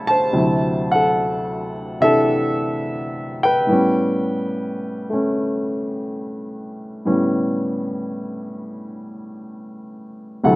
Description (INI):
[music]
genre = solo jazz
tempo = 71 BPM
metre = 4/4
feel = swing 67% on 8ths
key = A mixolydian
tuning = A4 = 435 Hz
[part]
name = warm upright piano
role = solo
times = 0.0-10.6 s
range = D2 to B5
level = -19 LUFS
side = equal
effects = none
[sound]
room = little or no reverb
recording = recorded outdoors, with no room sound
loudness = -18 LUFS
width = side -20 dB against mid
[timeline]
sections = 0.0-10.6 A section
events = none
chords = 0.3 D9; 3.7 A9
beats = | 0.34 1.18 2.02 2.86 | 3.70 4.54 5.38 6.23 | 7.07 7.91 8.75 9.60 | 10.44